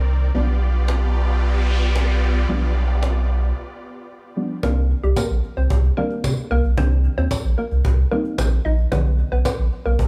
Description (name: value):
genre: dance-pop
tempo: 112 BPM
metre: 4/4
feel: straight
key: C minor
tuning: A4 = 440 Hz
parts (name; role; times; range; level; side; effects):
- deep mellow chord stab; accompaniment; 0.0-9.6 s; D3 to Eb4; -30 LUFS; equal; chorus
- supersaw chords; sustained chords; 0.0-4.6 s; Eb3 to D5; -31 LUFS; equal; none
- warm sub bass; bass; 0.0-10.1 s; Bb1 to C3; -20 LUFS; equal; none
- noise sweep; sound effects; 1.0-3.6 s; none; -35 LUFS; equal; none
- cajon; drums; 0.9-10.1 s; none; -29 LUFS; equal; none
- hollow square pluck; melody; 4.6-10.0 s; G3 to Eb5; -29 LUFS; equal; chorus, tape echo
- tambourine; percussion; 5.2-9.6 s; none; -40 LUFS; equal; none
room: little or no reverb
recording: studio ambience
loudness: -20 LUFS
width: mono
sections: 0.0-4.6 A section; 4.6-10.1 B section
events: noise sweep 1.0-4.6; break 3.6-4.6; drop 4.6-10.1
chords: 0.3 G7/B; 4.6 Cm9; 8.9 G7